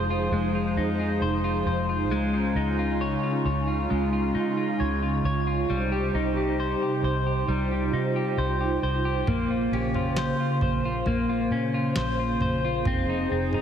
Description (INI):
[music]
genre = dream pop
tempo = 67 BPM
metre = 4/4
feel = straight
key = Db lydian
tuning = A4 = 440 Hz
[part]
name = hollow soft pad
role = sustained chords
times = 0.0-13.6 s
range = C3 to C5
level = -28 LUFS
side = right 2 dB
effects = ensemble chorus
[part]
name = electric guitar at the edge of break-up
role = arpeggios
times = 0.0-13.6 s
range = G3 to Db5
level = -27 LUFS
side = left 2 dB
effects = wide subtle chorus, tape echo
[part]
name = vintage muted fingered electric bass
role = bass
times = 0.0-13.6 s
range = F1 to Db3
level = -30 LUFS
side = right 1 dB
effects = none
[part]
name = booming analog drum machine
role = drums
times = 9.3-13.6 s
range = kick drum, snare drum, toms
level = -30 LUFS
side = right 1 dB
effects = none
[part]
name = nylon-string guitar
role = texture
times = 9.7-10.9 s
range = G4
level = -40 LUFS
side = right 2 dB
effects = stereo widening, tape echo
[sound]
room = moderate lush hall reverb, RT60 2.0 s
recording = heavily compressed radio sound, multiband compression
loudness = -23 LUFS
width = side -8 dB against mid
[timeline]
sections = 0.0-13.6 A section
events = none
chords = 0.0 Fm7; 2.1 Dbadd9; 5.7 Cm; 9.3 Bbmadd9; 12.9 Fm7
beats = 0.32 1.22 | 2.12 3.01 3.91 4.80 | 5.70 6.59 7.49 8.38 | 9.28 10.18 11.07 11.97 | 12.86